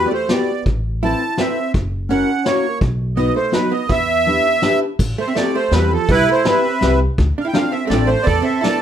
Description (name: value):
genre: musette waltz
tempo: 166 BPM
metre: 3/4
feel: straight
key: E minor, A minor from 5.0 s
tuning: A4 = 440 Hz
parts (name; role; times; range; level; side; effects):
- accordion; melody; 0.0-8.8 s; E4 to A5; -18 LUFS; right 2 dB; light tremolo tuning
- fingerpicked steel-string acoustic guitar; accompaniment; 0.0-8.8 s; B3 to B4; -20 LUFS; left 3 dB; none
- upright bass; bass; 0.0-8.4 s; F#1 to E2; -20 LUFS; equal; none
- archtop guitar, miked and amplified; second line; 0.1-8.8 s; F3 to E4; -23 LUFS; right 4 dB; none
- vintage brush drum kit; drums; 0.3-8.7 s; crash cymbal, hi-hat, kick drum, snare drum; -21 LUFS; equal; none
room: moderate studio reverb, RT60 0.6 s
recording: none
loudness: -15 LUFS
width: side -9 dB against mid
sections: 0.0-5.0 A section; 5.0-8.8 B section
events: none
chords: 0.0 Emadd9; 0.7 Amadd9; 1.7 F#7; 2.8 B; 3.9 Em7; 5.0 Am7; 6.1 Cmaj7; 7.2 Dm7; 8.3 E7sus4